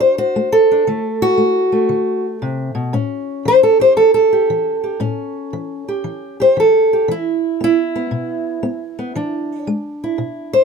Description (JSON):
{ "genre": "acoustic country blues, solo or duo", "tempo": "116 BPM", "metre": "4/4", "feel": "swing 66% on 8ths", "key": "A mixolydian", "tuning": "A4 = 443 Hz", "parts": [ { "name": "fingerpicked old ladder-braced acoustic guitar", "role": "solo", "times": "0.0-10.6 s", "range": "A2 to C5", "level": "-14 LUFS", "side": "equal", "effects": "none" } ], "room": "light reverb", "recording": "close, detailed microphones", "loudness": "-14 LUFS", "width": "side -5 dB against mid", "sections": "0.0-10.6 A section", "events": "none", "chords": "0.0 D7; 2.9 A7; 7.1 E7", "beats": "0.35 | 0.87 1.39 1.91 2.43 | 2.95 3.47 3.99 4.50 | 5.02 5.54 6.06 6.58 | 7.09 7.61 8.13 8.65 | 9.16 9.68 10.20" }